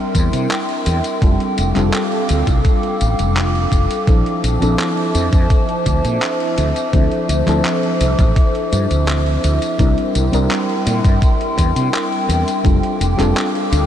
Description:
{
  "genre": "vaporwave",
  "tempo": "84 BPM",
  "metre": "4/4",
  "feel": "straight",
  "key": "F major",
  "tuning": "A4 = 436 Hz",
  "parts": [
    { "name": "mellow FM electric piano", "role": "accompaniment", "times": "0.0-13.9 s", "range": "F3 to Bb4", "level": "-20 LUFS", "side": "equal", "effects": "phaser, wide subtle chorus, cassette tape, diffuse ambient delay" },
    { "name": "warbly tape-like pad", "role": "sustained chords", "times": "0.0-13.9 s", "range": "A4 to D6", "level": "-22 LUFS", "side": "equal", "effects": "chorus, built-in reverb" },
    { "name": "mellow fretless electric bass", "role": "bass", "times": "0.1-13.9 s", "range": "F1 to C3", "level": "-17 LUFS", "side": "equal", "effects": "tube saturation, analog chorus" },
    { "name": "electronic kick drum", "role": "drums", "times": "0.1-12.8 s", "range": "none", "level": "-15 LUFS", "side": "equal", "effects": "vintage 12-bit sampler grit" },
    { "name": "detuned 8-bit digital drum machine", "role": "drums", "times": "0.2-13.9 s", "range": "handclaps, hi-hat, tambourine", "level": "-25 LUFS", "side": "left 1 dB", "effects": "vintage 12-bit sampler grit" }
  ],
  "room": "moderate huge ambient reverb, RT60 8.3 s",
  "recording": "dreamy mix soaked in reverb, lossy compression artefacts",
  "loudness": "-14 LUFS",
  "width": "side -10 dB against mid",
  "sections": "0.0-13.9 A section",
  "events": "none",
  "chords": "0.0 C7; 1.2 F69; 4.1 Bbmaj9#11; 6.9 Dm9; 9.8 C7; 12.7 F69"
}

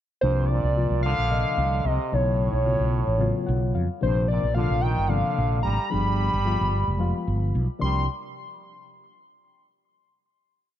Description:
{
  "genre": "jazz",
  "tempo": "222 BPM (eighths)",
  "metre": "7/8",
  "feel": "straight",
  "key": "unclear",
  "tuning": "A4 = 441 Hz",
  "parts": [
    { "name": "hollow square lead", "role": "melody", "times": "0.2-8.1 s", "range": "C5 to C6", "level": "-27 LUFS", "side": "left 2 dB", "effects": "chorus" },
    { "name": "trombone with metal mute", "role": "second line", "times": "0.2-8.1 s", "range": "G2 to G3", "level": "-32 LUFS", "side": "right 6 dB", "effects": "none" },
    { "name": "barky reed electric piano", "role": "accompaniment", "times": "0.2-8.1 s", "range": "C3 to F#5", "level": "-30 LUFS", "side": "left 4 dB", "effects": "overdrive, phaser" },
    { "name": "mellow fretless electric bass", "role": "bass", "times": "0.2-8.1 s", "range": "F1 to F2", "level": "-24 LUFS", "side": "right 1 dB", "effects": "wide subtle chorus" }
  ],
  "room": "light reverb",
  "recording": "dark, warm production",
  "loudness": "-21 LUFS",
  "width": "side -11 dB against mid",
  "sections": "0.2-7.8 A section; 7.8-9.7 final chord",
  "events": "reed electric piano fill 3.2-4.0",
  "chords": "0.2 Cm11; 2.1 B9; 4.0 Bb69; 5.9 G7b9; 7.8 C9sus4"
}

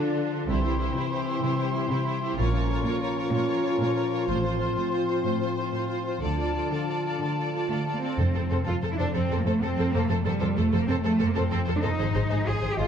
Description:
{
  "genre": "cinematic",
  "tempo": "126 BPM (dotted quarters)",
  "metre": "12/8",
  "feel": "straight",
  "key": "F major",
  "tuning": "A4 = 442 Hz",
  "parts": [
    { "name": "clear symphonic violin section", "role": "melody", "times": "0.0-12.8 s", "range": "A4 to D5", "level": "-38 LUFS", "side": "left 2 dB", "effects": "none" },
    { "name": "mellow clarinet", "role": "second line", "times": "0.0-8.0 s", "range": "E4 to F4", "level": "-34 LUFS", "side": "left 1 dB", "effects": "none" },
    { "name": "rich studio violin section", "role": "second line", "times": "0.0-12.8 s", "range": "F4 to C5", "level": "-36 LUFS", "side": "left 2 dB", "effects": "none" },
    { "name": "silver concert flute", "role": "second line", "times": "0.0-8.0 s", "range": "A5 to Db6", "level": "-35 LUFS", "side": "left 1 dB", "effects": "none" },
    { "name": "rich symphonic viola section", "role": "accompaniment", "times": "0.0-12.9 s", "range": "D4 to A4", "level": "-33 LUFS", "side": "right 2 dB", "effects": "none" },
    { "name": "mellow French horn section", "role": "sustained chords", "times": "0.0-12.8 s", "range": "E3 to Eb5", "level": "-33 LUFS", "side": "left 3 dB", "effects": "none" },
    { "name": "concert harp", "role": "arpeggios", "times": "0.0-12.9 s", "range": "F2 to C5", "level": "-33 LUFS", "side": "left 7 dB", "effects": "none" },
    { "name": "rich symphonic cello section", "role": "bass", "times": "0.0-12.9 s", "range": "A2 to Ab4", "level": "-30 LUFS", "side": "right 2 dB", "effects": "none" },
    { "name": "rich symphonic double bass section", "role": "bass", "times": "0.5-12.8 s", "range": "Ab1 to F2", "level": "-28 LUFS", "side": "right 3 dB", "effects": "none" },
    { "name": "timpani", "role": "percussion", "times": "8.2-8.6 s", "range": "F2", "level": "-30 LUFS", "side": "equal", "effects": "none" }
  ],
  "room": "moderate scoring stage reverb, RT60 1.8 s",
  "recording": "dark, warm production",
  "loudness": "-24 LUFS",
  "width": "side -8 dB against mid",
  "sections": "0.0-8.2 A section; 8.2-12.9 B section",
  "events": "build-up 0.0-8.2",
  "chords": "0.5 C; 2.4 Bbm; 4.3 F/A; 6.2 Dm; 8.2 F; 12.0 Ab"
}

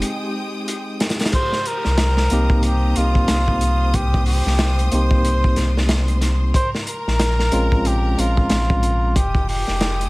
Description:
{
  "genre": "trip hop",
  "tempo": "92 BPM",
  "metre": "4/4",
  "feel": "swing 60% on 16ths",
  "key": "C phrygian",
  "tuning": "A4 = 440 Hz",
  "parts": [
    { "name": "barky tine electric piano", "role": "accompaniment", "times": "0.0-9.2 s", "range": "Ab3 to G4", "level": "-24 LUFS", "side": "equal", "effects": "tremolo" },
    { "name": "clear symphonic violin section", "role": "sustained chords", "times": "0.0-10.1 s", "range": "Ab3 to Eb6", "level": "-31 LUFS", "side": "left 1 dB", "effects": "none" },
    { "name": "warm sub bass", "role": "bass", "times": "0.0-10.1 s", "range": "F1 to C2", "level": "-19 LUFS", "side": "equal", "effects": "none" },
    { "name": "crunchy breakbeat drum kit", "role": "drums", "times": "0.0-10.1 s", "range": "crash cymbal, hi-hat, kick drum, snare drum", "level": "-21 LUFS", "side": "equal", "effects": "none" },
    { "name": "backwards swelling texture", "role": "texture", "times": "0.0-1.3 s", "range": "G4", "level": "-38 LUFS", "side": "equal", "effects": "none" },
    { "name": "trumpet with cup mute", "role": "melody", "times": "1.3-10.1 s", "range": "F4 to C5", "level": "-24 LUFS", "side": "equal", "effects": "dub echo" }
  ],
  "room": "little or no reverb",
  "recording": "vinyl crackle",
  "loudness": "-16 LUFS",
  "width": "side -23 dB against mid",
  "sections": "0.0-1.3 A section; 1.3-10.1 B section",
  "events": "break 0.0-1.3",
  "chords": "0.0 Fm9 (rootless); 1.3 Cm7; 6.5 Bbm7; 9.2 Fm9"
}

